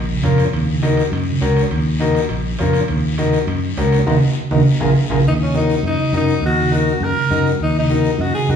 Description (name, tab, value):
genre	latin, cumbia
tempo	203 BPM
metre	4/4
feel	straight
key	Eb minor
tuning	A4 = 441 Hz
part	fingered electric bass	bass	0.0-8.6 s	Bb1 to Gb2	-20 LUFS	equal	none
part	congas	percussion	0.1-8.6 s	none	-19 LUFS	right 2 dB	none
part	combo organ	accompaniment	0.2-8.6 s	Db4 to Bb4	-21 LUFS	left 5 dB	none
part	guiro	percussion	0.2-8.6 s	none	-33 LUFS	left 4 dB	none
part	timbales	percussion	0.2-5.2 s	none	-30 LUFS	right 3 dB	none
part	raspy alto saxophone	melody	5.3-8.6 s	Db4 to Bb4	-20 LUFS	left 1 dB	none
room	wet large studio reverb, RT60 1.2 s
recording	band playing live in one room, studio reverb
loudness	-14 LUFS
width	side -8 dB against mid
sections	0.0-5.2 A section; 5.2-8.6 B section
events	drum fill 4.1-5.2; band accent 4.1-5.2; transistor combo organ fill 4.7-5.2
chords	0.0 Bbm; 0.5 Ebm; 1.1 Gb; 1.7 Ebm; 2.3 Bbm; 2.9 Ebm; 3.5 Gb; 4.1 Ebm; 4.7 Bb5; 5.2 Ebm